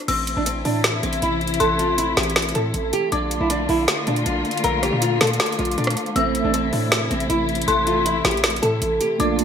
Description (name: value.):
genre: hip hop, trap.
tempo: 158 BPM.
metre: 4/4.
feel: half-time.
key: A phrygian.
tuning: A4 = 444 Hz.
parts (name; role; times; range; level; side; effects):
nylon-string guitar; melody; 0.1-9.4 s; C4 to Bb4; -23 LUFS; equal; lush chorus, low-pass filter.
dark detuned synth bell; second line; 0.1-9.4 s; Bb5 to E6; -26 LUFS; left 3 dB; chorus, ping-pong delay.
warm symphonic string section; sustained chords; 0.1-9.4 s; Bb2 to F4; -26 LUFS; left 3 dB; none.
hard-hitting 808-style bass; bass; 0.1-9.4 s; A1 to Bb2; -26 LUFS; equal; none.
trap drum kit; drums; 0.1-9.4 s; crash cymbal, hi-hat, rim click, snare drum; -23 LUFS; equal; gated reverb.
mellow tine electric piano; accompaniment; 6.2-9.4 s; A3 to E5; -27 LUFS; right 9 dB; ensemble chorus, low-pass filter.
room: wet plate reverb, RT60 1.7 s.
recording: bright 1980s-style digital production.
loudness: -18 LUFS.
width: side -8 dB against mid.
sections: 0.1-9.4 A section.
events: none.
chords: 0.1 Am; 3.1 Bbmaj7; 6.2 Am.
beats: | 0.08 0.46 0.84 1.22 | 1.60 1.98 2.36 2.74 | 3.12 3.50 3.88 4.26 | 4.64 5.02 5.40 5.78 | 6.16 6.54 6.92 7.30 | 7.68 8.06 8.44 8.82 | 9.20.